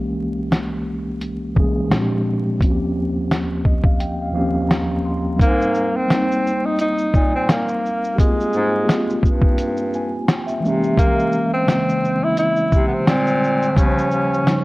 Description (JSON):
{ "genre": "lo-fi hip hop", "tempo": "86 BPM", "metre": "4/4", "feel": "swing 57% on 16ths", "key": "Ab major", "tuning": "A4 = 439 Hz", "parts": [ { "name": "mellow tine electric piano", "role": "accompaniment", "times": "0.0-14.6 s", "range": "C2 to C6", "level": "-21 LUFS", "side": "equal", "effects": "medium stereo tremolo, low-pass filter" }, { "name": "lo-fi sampler-style drum kit", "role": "drums", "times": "0.5-14.6 s", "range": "hi-hat, kick drum, shaker, snare drum", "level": "-18 LUFS", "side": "equal", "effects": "none" }, { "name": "breathy tenor saxophone", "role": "melody", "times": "5.4-14.6 s", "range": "Ab3 to E4", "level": "-20 LUFS", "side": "equal", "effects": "low-pass filter" }, { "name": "breathy bass clarinet", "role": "bass", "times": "5.4-14.4 s", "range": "Eb2 to C3", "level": "-23 LUFS", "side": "equal", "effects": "none" } ], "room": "moderate spring reverb, RT60 1.8 s, digital ambience", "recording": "worn, warbling old tape, cassette tape, vinyl crackle, warbly pitch drift, lossy compression artefacts", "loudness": "-16 LUFS", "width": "side -21 dB against mid", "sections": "0.0-5.4 A section; 5.4-14.6 B section", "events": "filter sweep 0.0-5.4; tine electric piano fill 3.3-5.4", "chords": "0.0 C7b9b13; 1.9 Bb13; 2.6 Eb13; 5.4 Abmaj7; 10.6 C7b9b13; 13.1 Bb13; 13.8 Eb13" }